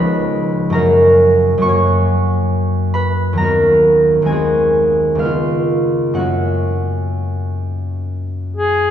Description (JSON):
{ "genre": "classical, romantic duo for cor anglais and harp", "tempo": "61-69 BPM", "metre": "3/4", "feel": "rubato", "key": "F# major", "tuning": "A4 = 439 Hz", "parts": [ { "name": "concert harp", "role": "accompaniment", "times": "0.0-8.9 s", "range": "C#2 to D#6", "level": "-13 LUFS", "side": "equal", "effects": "none" }, { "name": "mellow cor anglais", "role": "melody", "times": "8.6-8.9 s", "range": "G#4", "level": "-14 LUFS", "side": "left 3 dB", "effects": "none" } ], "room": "wet concert hall reverb, RT60 2.4 s", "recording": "heard from further back in the room", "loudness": "-13 LUFS", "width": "side -10 dB against mid", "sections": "0.0-8.9 A section", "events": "none", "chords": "0.0 C#13; 0.7 F#; 3.4 B/D#; 4.3 G#7/D#; 5.2 C#7; 6.2 F#" }